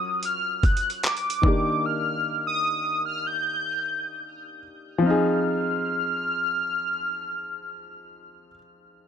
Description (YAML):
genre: contemporary R&B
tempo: 75 BPM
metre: 4/4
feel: swing 54% on 16ths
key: F dorian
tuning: A4 = 440 Hz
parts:
  - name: warm velvety synth lead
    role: melody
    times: 0.0-8.5 s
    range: D6 to G6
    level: -26 LUFS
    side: equal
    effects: chorus, digital delay
  - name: warm concert grand piano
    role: accompaniment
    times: 0.0-9.1 s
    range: Eb3 to Bb4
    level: -26 LUFS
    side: left 1 dB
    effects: none
  - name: dusty soul sampler-style drum kit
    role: drums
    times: 0.2-1.6 s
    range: handclaps, hi-hat, kick drum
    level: -22 LUFS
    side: equal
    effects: none
room: little or no reverb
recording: dark, warm production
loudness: -23 LUFS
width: side -8 dB against mid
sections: 0.0-5.0 A section; 5.0-8.2 B section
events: none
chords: 0.0 Gbmaj7; 1.4 Ebmaj7; 5.0 Fm7